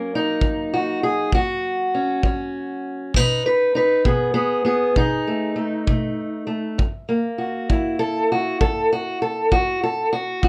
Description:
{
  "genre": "acoustic country blues, solo or duo",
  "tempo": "66 BPM (dotted quarters)",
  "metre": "12/8",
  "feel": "straight",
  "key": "F# mixolydian",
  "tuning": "A4 = 440 Hz",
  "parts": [
    { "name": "fingerpicked steel-string acoustic guitar", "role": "melody", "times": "0.0-10.5 s", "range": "F#2 to B4", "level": "-22 LUFS", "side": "equal", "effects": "none" },
    { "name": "kick drum", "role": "drums", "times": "0.4-10.5 s", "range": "none", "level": "-24 LUFS", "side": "equal", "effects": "none" }
  ],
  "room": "moderate studio ambience, RT60 0.5 s",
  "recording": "none",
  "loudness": "-21 LUFS",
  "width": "mono",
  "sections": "0.0-10.5 A section",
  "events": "none",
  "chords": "0.0 F#; 3.1 B7; 6.8 F#7"
}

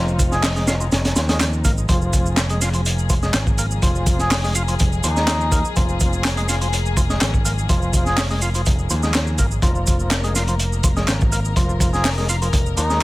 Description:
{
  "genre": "breakbeat, breaks",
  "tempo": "124 BPM",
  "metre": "4/4",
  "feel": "straight",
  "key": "F minor",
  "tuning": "A4 = 440 Hz",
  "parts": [
    { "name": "dark studio string section", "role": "sustained chords", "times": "0.0-13.0 s", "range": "F3 to Bb4", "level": "-28 LUFS", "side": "left 3 dB", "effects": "sidechain pumping" },
    { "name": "overdriven tonewheel organ", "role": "riff", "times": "0.0-13.0 s", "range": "F3 to F4", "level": "-27 LUFS", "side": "equal", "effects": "chorus vibrato, tube saturation, vintage 12-bit sampler grit, ping-pong delay" },
    { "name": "modern bright picked electric bass", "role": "bass", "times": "0.0-13.0 s", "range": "F1 to Eb2", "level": "-22 LUFS", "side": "equal", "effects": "tube saturation" },
    { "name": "electronic shaker and handclaps", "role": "drums", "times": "0.1-13.0 s", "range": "none", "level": "-26 LUFS", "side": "right 2 dB", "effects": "none" },
    { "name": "crunchy breakbeat drum kit", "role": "drums", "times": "0.2-13.0 s", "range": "hi-hat, kick drum, snare drum", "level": "-20 LUFS", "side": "equal", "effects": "none" },
    { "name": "trumpet with cup mute", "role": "melody", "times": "0.3-0.5, 4.2-8.2, 11.9-13.0 s", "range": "Eb4 to Ab4", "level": "-26 LUFS", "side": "equal", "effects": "old record sound, ping-pong delay" }
  ],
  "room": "little or no reverb",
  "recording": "none",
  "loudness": "-16 LUFS",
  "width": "side -18 dB against mid",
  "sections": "0.0-13.0 A section",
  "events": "none",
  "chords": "0.0 Fm"
}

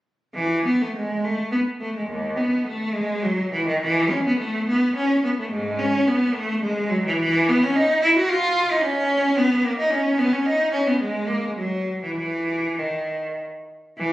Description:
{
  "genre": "classical, baroque-style suite movement for unaccompanied cello",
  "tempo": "96-112 BPM",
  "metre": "3/4",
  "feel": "rubato",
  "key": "unclear",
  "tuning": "A4 = 442 Hz",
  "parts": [
    { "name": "rich cello", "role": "solo", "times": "0.3-14.1 s", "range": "D#2 to F#4", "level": "-20 LUFS", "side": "equal", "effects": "none" }
  ],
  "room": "wet recital hall reverb, RT60 1.3 s",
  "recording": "recorded on a phone in the room, studio reverb, compression, lossy compression artefacts",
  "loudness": "-20 LUFS",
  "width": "side -15 dB against mid",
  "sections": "0.4-14.0 A section",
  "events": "none",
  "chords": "none"
}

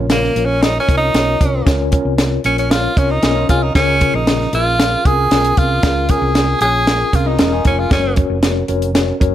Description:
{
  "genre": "uptempo 1960s-style soul",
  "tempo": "115 BPM",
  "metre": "4/4",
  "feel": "straight",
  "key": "Db major",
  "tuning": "A4 = 440 Hz",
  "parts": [
    { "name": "mellow tine electric piano", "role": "accompaniment", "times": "0.0-9.3 s", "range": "Db3 to Db5", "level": "-20 LUFS", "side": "left 2 dB", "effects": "medium stereo tremolo" },
    { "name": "hollow-body short-scale fingered electric bass", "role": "bass", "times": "0.0-9.3 s", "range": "Fb1 to Db2", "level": "-20 LUFS", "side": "right 1 dB", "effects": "none" },
    { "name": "bright tenor saxophone", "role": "melody", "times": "0.1-8.2 s", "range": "Bb3 to Ab4", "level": "-17 LUFS", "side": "right 1 dB", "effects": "none" },
    { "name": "compact cocktail drum kit", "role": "drums", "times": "0.1-9.3 s", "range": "hi-hat, kick drum, snare drum", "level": "-16 LUFS", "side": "equal", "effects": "none" },
    { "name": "electric guitar through a small old amp", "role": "riff", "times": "3.2-3.9, 7.3-7.9 s", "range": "Bb3 to Bb4", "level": "-23 LUFS", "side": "left 4 dB", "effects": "none" }
  ],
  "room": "light reverb",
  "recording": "none",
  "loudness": "-12 LUFS",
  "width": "side -12 dB against mid",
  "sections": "0.0-9.3 A section",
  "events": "tenor saxophone solo 0.0-9.3",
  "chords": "0.0 Bbm; 3.8 Db6; 7.9 Gb"
}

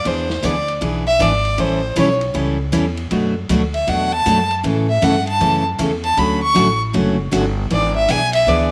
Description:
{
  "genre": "country, western swing",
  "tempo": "157 BPM",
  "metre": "4/4",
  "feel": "swing 65% on 8ths",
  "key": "unclear",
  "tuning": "A4 = 442 Hz",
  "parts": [
    { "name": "clear fiddle", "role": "second line", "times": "0.0-8.7 s", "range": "C5 to C#6", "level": "-20 LUFS", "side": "equal", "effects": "none" },
    { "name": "upright bass", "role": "bass", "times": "0.0-8.7 s", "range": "F#1 to A2", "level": "-25 LUFS", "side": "equal", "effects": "none" },
    { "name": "picked steel-string acoustic guitar", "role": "accompaniment", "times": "0.1-8.7 s", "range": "B2 to A4", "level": "-21 LUFS", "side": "equal", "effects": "none" },
    { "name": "vintage drum kit", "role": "drums", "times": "0.1-8.4 s", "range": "hi-hat, ride cymbal, snare drum", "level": "-34 LUFS", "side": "equal", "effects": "none" }
  ],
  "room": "moderate spring reverb, RT60 1.8 s, studio reverb",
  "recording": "none",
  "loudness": "-17 LUFS",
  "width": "mono",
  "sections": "0.0-8.7 A section",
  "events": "fiddle solo 0.0-8.7",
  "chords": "0.0 E7; 1.6 A7; 3.1 Bm7; 4.6 A; 6.2 Dmaj7; 7.7 E7"
}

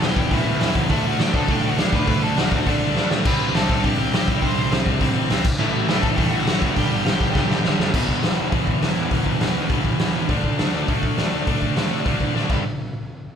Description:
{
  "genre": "punk rock",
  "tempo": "204 BPM",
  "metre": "4/4",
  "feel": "straight",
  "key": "unclear",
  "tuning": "A4 = 441 Hz",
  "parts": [
    { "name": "dark smooth lead guitar", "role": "melody", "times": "0.0-7.6 s", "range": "D4 to C6", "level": "-28 LUFS", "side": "equal", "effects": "overdrive" },
    { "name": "distorted electric guitar", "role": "riff", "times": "0.0-12.6 s", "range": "E2 to D4", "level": "-25 LUFS", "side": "left 9 dB", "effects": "overdrive" },
    { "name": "overdriven electric guitar", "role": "riff", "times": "0.0-12.6 s", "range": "E2 to D4", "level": "-26 LUFS", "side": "right 8 dB", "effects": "none" },
    { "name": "fuzz picked electric bass", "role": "bass", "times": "0.0-12.6 s", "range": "E1 to C3", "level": "-29 LUFS", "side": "equal", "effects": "overdrive" },
    { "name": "raw garage drum kit", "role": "drums", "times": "0.0-12.6 s", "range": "crash cymbal, hi-hat, kick drum, snare drum", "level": "-21 LUFS", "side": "equal", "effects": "none" }
  ],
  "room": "light reverb",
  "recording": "band playing live in one room",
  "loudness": "-18 LUFS",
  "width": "side -8 dB against mid",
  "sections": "0.0-7.9 A section; 7.9-12.6 B section",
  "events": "drum fill 3.0, 7.4-7.9, 12.4",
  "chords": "0.0 Em; 0.9 D; 3.3 C5; 5.4 A5; 6.8 G5; 7.9 E5; 10.3 D5; 12.5 G5; 12.6 N.C."
}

